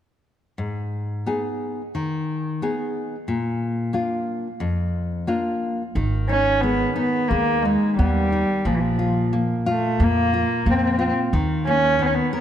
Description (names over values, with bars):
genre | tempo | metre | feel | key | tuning
fado-style ballad | 89 BPM | 4/4 | rubato | G# harmonic minor | A4 = 440 Hz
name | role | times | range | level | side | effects
nylon-string guitar | accompaniment | 0.6-12.4 s | E#2 to A#4 | -24 LUFS | left 2 dB | none
upright bass | bass | 6.0-12.2 s | G#1 to E#2 | -24 LUFS | right 1 dB | none
warm cello | melody | 6.3-12.4 s | E3 to C#4 | -20 LUFS | right 1 dB | none
room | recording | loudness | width
moderate concert hall reverb, RT60 2.5 s | none | -20 LUFS | side -10 dB against mid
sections
0.6-5.9 A section; 5.9-12.4 B section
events
none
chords
0.6 G#m; 3.3 A#; 5.9 G#m; 8.7 A#5; 11.3 D#5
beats
| 0.57 1.26 1.94 2.62 | 3.28 3.93 4.59 5.27 | 5.95 6.63 7.31 7.98 | 8.65 9.33 10.00 10.66 | 11.33 11.99